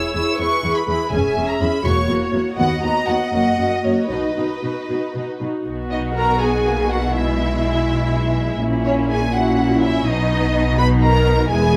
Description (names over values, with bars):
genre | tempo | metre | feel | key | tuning
quick classical-period movement for string orchestra | 82 BPM (dotted quarters) | 6/8 | rubato | B major | A4 = 440 Hz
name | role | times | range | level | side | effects
rich studio violin section | melody | 0.0-11.8 s | B4 to E6 | -26 LUFS | equal | none
rich symphonic violin section | second line | 0.0-11.8 s | G#3 to E5 | -26 LUFS | equal | none
warm symphonic viola section | accompaniment | 0.0-11.8 s | A#3 to B4 | -24 LUFS | equal | none
rich symphonic cello section | bass | 0.1-11.8 s | D#2 to B2 | -26 LUFS | equal | none
dark symphonic double bass section | bass | 1.1-11.8 s | E1 to D#2 | -26 LUFS | equal | none
room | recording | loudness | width
moderate large studio reverb, RT60 1.4 s | none | -19 LUFS | mono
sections
0.0-5.7 A section; 5.7-11.8 B section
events
none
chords
0.0 E; 1.1 C#m/E; 1.9 F#7/E; 2.6 B/D#; 3.3 F#; 4.1 B; 5.7 B5; 7.2 E/B; 8.6 F#7/A#; 10.1 B